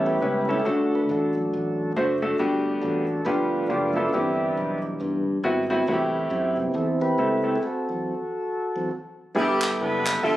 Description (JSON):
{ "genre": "uptempo gospel", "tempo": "138 BPM", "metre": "4/4", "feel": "swing 61% on 8ths", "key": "G major", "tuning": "A4 = 436 Hz", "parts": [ { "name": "warm upright piano", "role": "accompaniment", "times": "0.0-10.4 s", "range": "G2 to E5", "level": "-24 LUFS", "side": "equal", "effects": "none" }, { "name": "mellow tonewheel organ", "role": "sustained chords", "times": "0.0-10.4 s", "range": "C3 to E5", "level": "-26 LUFS", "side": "right 1 dB", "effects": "slow rotary speaker" }, { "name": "modern bright fingered electric bass", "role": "bass", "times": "0.0-10.4 s", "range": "F#1 to G2", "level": "-32 LUFS", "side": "equal", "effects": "none" }, { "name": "mellow horn section", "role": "melody", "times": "9.4-10.4 s", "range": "G3 to B4", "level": "-24 LUFS", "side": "equal", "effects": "none" }, { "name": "group handclap", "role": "percussion", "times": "9.6-10.1 s", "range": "none", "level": "-26 LUFS", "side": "equal", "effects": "none" } ], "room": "moderate large studio reverb, RT60 1.2 s, small room ambience", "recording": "recorded on a phone in the room, studio ambience", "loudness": "-22 LUFS", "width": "side -14 dB against mid", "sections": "0.0-9.4 A section; 9.4-10.4 B section", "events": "tonewheel organ solo 0.0-9.4; stop 7.6-9.4", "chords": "0.0 A7; 0.7 D; 2.4 Gmaj7; 3.3 G7; 4.1 Cmaj7/G; 5.9 Am7; 7.6 Am6/E; 9.4 G69" }